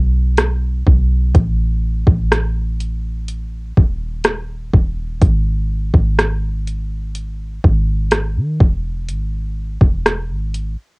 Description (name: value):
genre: contemporary R&B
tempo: 62 BPM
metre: 4/4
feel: straight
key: G# minor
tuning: A4 = 441 Hz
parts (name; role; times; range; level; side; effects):
- clean 808-style bass; bass; 0.0-10.8 s; D#1 to D#3; -17 LUFS; equal; none
- smooth R&B drum kit; drums; 0.4-10.8 s; hi-hat, kick drum, rim click; -14 LUFS; equal; overdrive, cassette tape
room: little or no reverb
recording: home recording on cassette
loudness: -15 LUFS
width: side -32 dB against mid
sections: 0.0-11.0 A section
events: none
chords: none